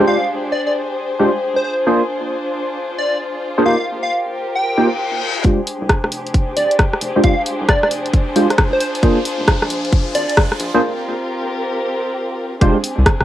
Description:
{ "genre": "UK garage, two-step garage", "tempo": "134 BPM", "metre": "4/4", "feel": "swing 65% on 16ths", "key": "F dorian", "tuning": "A4 = 440 Hz", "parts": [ { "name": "muted studio violin section", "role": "sustained chords", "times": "0.0-13.2 s", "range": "C4 to C5", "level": "-23 LUFS", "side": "left 1 dB", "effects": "sidechain pumping, low-pass filter, cassette tape" }, { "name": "percussive organ stab", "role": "stabs", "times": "0.0-12.8 s", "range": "Ab3 to C5", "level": "-17 LUFS", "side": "equal", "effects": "ensemble chorus, cassette tape, analog delay" }, { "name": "plucky unison lead", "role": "melody", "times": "0.1-10.3 s", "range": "C5 to G5", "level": "-20 LUFS", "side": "equal", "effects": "cassette tape, analog delay" }, { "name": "reverse cymbal and riser", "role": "sound effects", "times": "4.8-10.8 s", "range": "none", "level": "-28 LUFS", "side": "left 4 dB", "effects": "none" }, { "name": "rubbery square bass", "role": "bass", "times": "5.4-13.2 s", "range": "D1 to C2", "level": "-23 LUFS", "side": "equal", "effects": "high-pass filter" }, { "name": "electronic kick drum", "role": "drums", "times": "5.4-13.2 s", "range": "none", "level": "-15 LUFS", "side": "equal", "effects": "cassette tape" }, { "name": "punchy analog drum machine", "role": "drums", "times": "5.4-13.2 s", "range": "hi-hat, rim click", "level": "-18 LUFS", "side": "equal", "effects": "low-pass filter on hats, cassette tape, low-pass filter on snare" } ], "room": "moderate small room reverb, RT60 0.5 s", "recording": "home recording on cassette", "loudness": "-15 LUFS", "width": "side -12 dB against mid", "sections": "0.0-5.4 A section; 5.4-12.6 B section", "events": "reverse cymbal 4.8-5.4; build-up 5.4-12.6; riser 5.4-10.8; filter sweep on synth stab 5.4-12.6; filter sweep on digital synth lead 5.4-12.6; break 10.8-12.6", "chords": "0.0 Fm69; 1.6 Bb7; 3.7 Eb69; 5.4 Fm69; 8.8 Bb7; 10.8 C7sus4; 12.6 Fm69" }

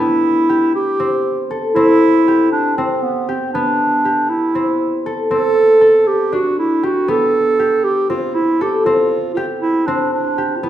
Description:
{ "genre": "contemporary instrumental, chamber music in an uneven meter", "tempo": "237 BPM (eighths)", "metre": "7/8", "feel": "straight", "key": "A minor", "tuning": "A4 = 440 Hz", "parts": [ { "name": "dark clarinet", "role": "melody", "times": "0.0-10.7 s", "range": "B3 to A4", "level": "-14 LUFS", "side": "right 1 dB", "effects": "none" }, { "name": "concert harp", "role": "arpeggios", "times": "0.0-10.7 s", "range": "A3 to A4", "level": "-19 LUFS", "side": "left 2 dB", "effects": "none" } ], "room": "wet recital hall reverb, RT60 1.5 s", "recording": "recorded in a church or concert hall", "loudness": "-13 LUFS", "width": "side -11 dB against mid", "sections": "0.0-10.7 A section", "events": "none", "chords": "0.0 Am9; 1.8 Gsus4; 3.5 Am9; 5.3 D5; 7.1 Am9; 8.9 G7sus4" }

